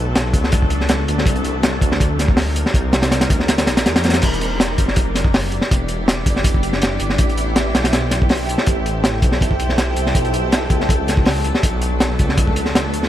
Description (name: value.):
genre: drum and bass, jungle.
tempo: 162 BPM.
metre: 4/4.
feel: straight.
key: E minor.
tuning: A4 = 438 Hz.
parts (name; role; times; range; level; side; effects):
detuned saw bass; bass; 0.0-13.1 s; E1 to F2; -21 LUFS; equal; none.
crunchy breakbeat drum kit; drums; 0.2-13.1 s; crash cymbal, hi-hat, kick drum, snare drum; -16 LUFS; equal; none.
room: studio reverb.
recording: none.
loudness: -15 LUFS.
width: side -12 dB against mid.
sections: 0.0-4.2 A section; 4.2-13.1 A section.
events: drop 0.0-4.2, 4.2-13.1.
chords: none.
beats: 0.15 0.52 0.89 | 1.26 1.63 2.00 2.37 | 2.75 3.12 3.48 3.86 | 4.23 4.60 4.97 5.34 | 5.71 6.08 6.45 6.82 | 7.19 7.56 7.93 8.30 | 8.67 9.04 9.41 9.78 | 10.15 10.52 10.89 11.26 | 11.63 12.00 12.37 12.74.